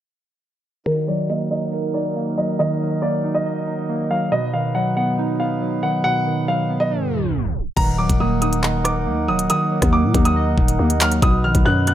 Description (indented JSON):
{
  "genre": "hip hop, drill",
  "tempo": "139 BPM",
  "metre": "4/4",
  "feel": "half-time",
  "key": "Eb harmonic minor",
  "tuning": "A4 = 441 Hz",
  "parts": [
    { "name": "warm grand piano", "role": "melody", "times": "0.9-11.9 s", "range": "Bb4 to F#6", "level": "-23 LUFS", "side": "equal", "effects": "low-pass filter, dub echo" },
    { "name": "warbly lo-fi synth keys", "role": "accompaniment", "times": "0.9-11.9 s", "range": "B2 to Eb5", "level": "-22 LUFS", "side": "right 2 dB", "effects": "chorus, low-pass filter, dub echo" },
    { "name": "mellow accordion", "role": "sustained chords", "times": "0.9-11.9 s", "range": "Gb3 to Gb5", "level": "-29 LUFS", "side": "right 1 dB", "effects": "low-pass filter" },
    { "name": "reverse cymbal", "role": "sound effects", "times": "7.0-7.8 s", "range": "none", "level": "-43 LUFS", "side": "left 8 dB", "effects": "none" },
    { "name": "growling 808-style bass", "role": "bass", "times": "7.8-11.9 s", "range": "Eb1 to Bb2", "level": "-20 LUFS", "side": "left 1 dB", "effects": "none" },
    { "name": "drill drum kit", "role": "drums", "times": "7.8-11.9 s", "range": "crash cymbal, handclaps, hi-hat, kick drum, rim click", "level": "-19 LUFS", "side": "equal", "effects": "none" }
  ],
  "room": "light reverb, digital ambience",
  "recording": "echo-heavy mix, tape stop",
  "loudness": "-17 LUFS",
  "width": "side -11 dB against mid",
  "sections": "0.9-7.8 A section; 7.8-11.9 B section",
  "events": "filter sweep 0.9-7.8; tape stop 6.9-7.8; reverse cymbal 7.0-7.8",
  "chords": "0.9 Ebm; 4.3 B; 7.8 Ebm; 11.2 B"
}